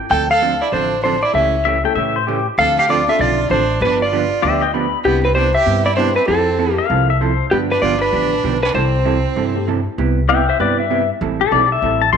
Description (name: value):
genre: country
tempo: 194 BPM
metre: 4/4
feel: swing 64% on 8ths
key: C major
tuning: A4 = 440 Hz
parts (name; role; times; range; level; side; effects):
- clean lap steel guitar; melody; 0.1-9.7 s; G4 to G5; -17 LUFS; left 1 dB; none
- clear fiddle; second line; 0.1-9.7 s; B3 to A4; -23 LUFS; right 7 dB; none
- hollow-body jazz guitar; accompaniment; 0.1-12.2 s; C3 to A4; -22 LUFS; right 9 dB; none
- upright bass; bass; 0.1-12.2 s; G1 to A2; -21 LUFS; left 1 dB; none
- dark upright piano; accompaniment; 1.3-9.7 s; A3 to B4; -27 LUFS; left 10 dB; none
- pedal steel guitar; second line; 1.7-7.5, 10.3-12.2 s; G4 to C6; -17 LUFS; left 8 dB; none
room: moderate echo chamber reverb, RT60 1.5 s, small room ambience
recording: 1960s-style stereo with parts hard left and right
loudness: -14 LUFS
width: side -7 dB against mid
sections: 0.0-10.0 A section; 10.0-12.2 B section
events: pedal steel guitar solo 10.0-12.2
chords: 0.1 Dm7; 1.3 A7/C#; 2.6 Dm7; 3.8 G7; 5.0 Cmaj9; 6.3 Fmaj7; 7.5 G7; 8.7 C6; 10.0 Cmaj7; 11.2 Am9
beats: | 0.10 0.41 0.72 1.03 | 1.34 1.65 1.96 2.27 | 2.58 2.89 3.19 3.50 | 3.81 4.12 4.43 4.74 | 5.05 5.36 5.66 5.97 | 6.28 6.59 6.90 7.21 | 7.51 7.82 8.13 8.44 | 8.75 9.05 9.36 9.67 | 9.98 10.29 10.60 10.90 | 11.21 11.52 11.83 12.13